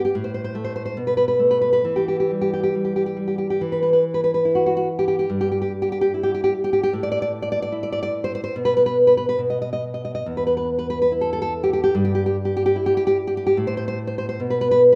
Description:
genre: romantic piece for solo classical guitar.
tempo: 66-77 BPM.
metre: 2/4.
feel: rubato.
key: E minor.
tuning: A4 = 440 Hz.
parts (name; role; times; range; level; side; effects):
nylon-string guitar; solo; 0.0-15.0 s; E2 to D#5; -21 LUFS; equal; none.
room: moderate scoring stage reverb, RT60 1.7 s.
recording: none.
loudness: -21 LUFS.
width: mono.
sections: 0.0-3.6 A section; 3.6-15.0 A section.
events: none.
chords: 0.2 N.C.; 1.0 Asus2/B; 1.8 Em; 3.6 N.C.; 5.3 Em/G; 6.9 A5; 8.5 N.C.; 11.9 Em/G; 13.6 N.C..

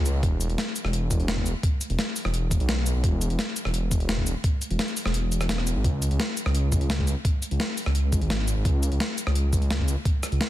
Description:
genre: liquid drum and bass.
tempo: 171 BPM.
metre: 4/4.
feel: straight.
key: unclear.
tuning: A4 = 439 Hz.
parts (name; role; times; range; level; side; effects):
swelling detuned saw bass; bass; 0.0-10.4 s; E1 to C#2; -24 LUFS; equal; none.
breakbeat sampler-style drum kit; drums; 0.1-10.5 s; cabasa, hi-hat, rim click, snare drum; -29 LUFS; left 1 dB; none.
electronic kick drum; drums; 0.2-10.1 s; none; -24 LUFS; equal; none.
room: little or no reverb.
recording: dense, heavily limited modern master.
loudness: -23 LUFS.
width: side -14 dB against mid.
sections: 0.0-10.5 A section.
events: kick drops out 5.1-5.8.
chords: none.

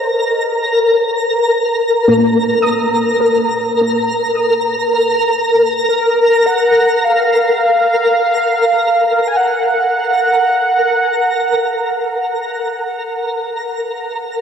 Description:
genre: ambient.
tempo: free time.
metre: none.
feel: none.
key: Eb minor.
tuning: A4 = 438 Hz.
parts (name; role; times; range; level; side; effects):
warm velvety synth lead; melody; 0.0-12.8 s; Bb4 to Ab5; -16 LUFS; right 1 dB; chorus, tape echo.
twinkling granular texture; texture; 0.0-14.0 s; Bb4 to Bb5; -15 LUFS; left 1 dB; built-in reverb, ensemble chorus.
soft round pluck; arpeggios; 2.1-8.9 s; Bb3 to Eb6; -17 LUFS; equal; ensemble chorus, vintage 12-bit sampler grit, tape echo.
room: wet cathedral reverb, RT60 5.4 s.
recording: dreamy mix soaked in reverb, cassette tape.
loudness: -12 LUFS.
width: side -7 dB against mid.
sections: 0.0-14.0 A section.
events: fade-in on soft synth lead 0.0-14.0; fade-out on synth pluck 0.0-14.0.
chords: 0.0 Eb5.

